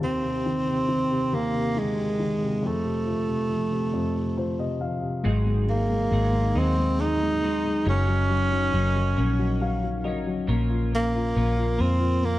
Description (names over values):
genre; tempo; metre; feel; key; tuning
pop; 46 BPM (dotted quarters); 6/8; straight; unclear; A4 = 440 Hz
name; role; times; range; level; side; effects
warm tenor saxophone; melody; 0.0-12.4 s; Ab3 to Eb4; -25 LUFS; right 2 dB; none
dark upright piano; accompaniment; 0.0-12.4 s; Eb2 to F5; -28 LUFS; left 3 dB; none
twelve-string electric guitar; arpeggios; 5.2-12.4 s; Ab2 to Bb4; -32 LUFS; equal; analog chorus, tape echo
vintage muted fingered electric bass; bass; 5.3-12.4 s; Gb1 to F2; -25 LUFS; equal; none
room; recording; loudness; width
light reverb, small room ambience; worn, warbling old tape, cassette tape, warbly pitch drift; -22 LUFS; side -16 dB against mid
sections
0.0-5.3 A section; 5.3-12.4 B section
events
upright piano fill 3.9-5.3, 9.2-10.5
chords
0.0 Ab/Eb; 2.6 F; 5.3 Ab7; 7.9 Ebm7/Gb; 10.5 Bbm